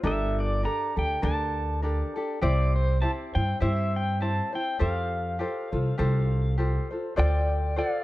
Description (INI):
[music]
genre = Hawaiian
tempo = 101 BPM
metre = 4/4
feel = swing 56% on 8ths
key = F major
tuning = A4 = 442 Hz
[part]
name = tenor ukulele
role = accompaniment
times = 0.0-8.0 s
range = C4 to D5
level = -31 LUFS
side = left 1 dB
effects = none
[part]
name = upright bass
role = bass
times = 0.0-7.8 s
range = G1 to G2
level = -26 LUFS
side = equal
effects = none
[part]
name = pedal steel guitar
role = melody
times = 0.1-8.0 s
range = C5 to Bb5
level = -31 LUFS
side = equal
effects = none
[sound]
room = light reverb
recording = dark, warm production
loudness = -24 LUFS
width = side -17 dB against mid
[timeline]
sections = 0.0-7.2 A section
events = none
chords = 0.0 Gmadd9; 2.4 C; 4.8 Fadd9; 7.2 Dm7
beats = | 0.04 0.63 1.23 1.83 | 2.42 3.02 3.61 4.21 | 4.80 5.40 5.99 6.59 | 7.18 7.78